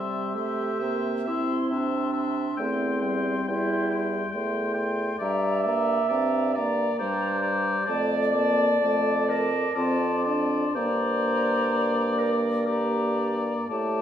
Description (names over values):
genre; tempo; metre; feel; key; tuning
classical, slow romantic movement for wind quintet; 58-70 BPM; 3/4; rubato; unclear; A4 = 440 Hz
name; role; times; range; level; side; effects
hollow concert flute; melody; 0.0-14.0 s; A5 to C6; -33 LUFS; left 6 dB; none
clear oboe; second line; 0.0-14.0 s; D5 to G5; -31 LUFS; left 4 dB; none
mellow French horn; accompaniment; 0.0-14.0 s; G3 to D4; -30 LUFS; left 1 dB; none
warm clarinet; accompaniment; 0.0-14.0 s; C4 to E5; -27 LUFS; right 3 dB; none
mellow bassoon; bass; 0.0-14.0 s; E2 to C3; -29 LUFS; right 1 dB; none
room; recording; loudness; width
wet stone room reverb, RT60 1.2 s; none; -23 LUFS; side -10 dB against mid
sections
0.0-14.0 A section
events
none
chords
0.0 C; 2.6 C/E; 5.2 Gm; 7.9 Dm/F; 10.8 Gmadd11